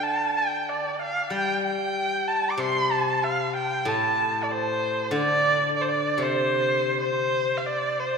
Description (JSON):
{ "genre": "chinese traditional, Chinese chamber ensemble", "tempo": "94 BPM", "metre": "4/4", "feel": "rubato", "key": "G shang mode", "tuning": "A4 = 440 Hz", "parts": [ { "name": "rich erhu", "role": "melody", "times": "0.0-8.2 s", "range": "C5 to D6", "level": "-23 LUFS", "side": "right 1 dB", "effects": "none" }, { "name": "steel-string zither", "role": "accompaniment", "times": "0.0-8.1 s", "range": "A2 to G3", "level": "-29 LUFS", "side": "left 3 dB", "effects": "none" } ], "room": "wet church reverb, RT60 3.4 s", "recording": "recorded in a church or concert hall", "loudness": "-22 LUFS", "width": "side -5 dB against mid", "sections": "0.0-8.2 A section", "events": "none", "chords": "none", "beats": "| 0.02 0.67 1.31 1.95 | 2.59 3.23 3.86 4.49 | 5.12 5.74 6.36 6.99 | 7.64" }